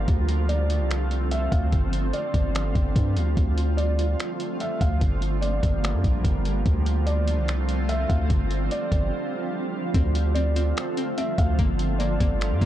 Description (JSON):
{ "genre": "hip hop, atmospheric cloud-rap", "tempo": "146 BPM", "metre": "4/4", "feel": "half-time", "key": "D minor", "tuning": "A4 = 441 Hz", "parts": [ { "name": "shimmering ambient pad", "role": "sustained chords", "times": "0.0-12.7 s", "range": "D3 to F4", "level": "-29 LUFS", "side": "right 1 dB", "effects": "chorus, built-in reverb, sidechain pumping" }, { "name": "long sustained 808-style bass", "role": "bass", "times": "0.0-12.7 s", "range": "G1 to G2", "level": "-24 LUFS", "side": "equal", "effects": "none" }, { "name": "trip hop sampler-style drum kit", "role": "drums", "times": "0.1-12.7 s", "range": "finger snaps, hi-hat, kick drum", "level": "-25 LUFS", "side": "equal", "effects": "none" }, { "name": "felt-muted upright piano", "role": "melody", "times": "0.5-12.7 s", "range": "D5 to F5", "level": "-33 LUFS", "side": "equal", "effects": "tape echo" }, { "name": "string-like resonator pluck", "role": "arpeggios", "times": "9.9-12.7 s", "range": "Bb3 to C4", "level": "-33 LUFS", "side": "left 5 dB", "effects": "chorus, tape echo" } ], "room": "digital ambience", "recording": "dark, warm production", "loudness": "-22 LUFS", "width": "side -12 dB against mid", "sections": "0.0-9.9 A section; 9.9-12.7 B section", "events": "break 9.1-9.9", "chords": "0.1 Dm7; 1.7 G7sus4; 3.4 Dm7; 5.0 Gm7; 6.7 Dm7; 8.3 G7sus4; 9.9 Dm7; 11.6 Gm7", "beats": "| 0.08 0.49 0.90 1.31 | 1.73 2.14 2.55 2.96 | 3.37 3.78 4.19 4.60 | 5.01 5.42 5.83 6.25 | 6.66 7.07 7.48 7.89 | 8.30 8.71 9.12 9.53 | 9.95 10.36 10.77 11.18 | 11.59 12.00 12.41" }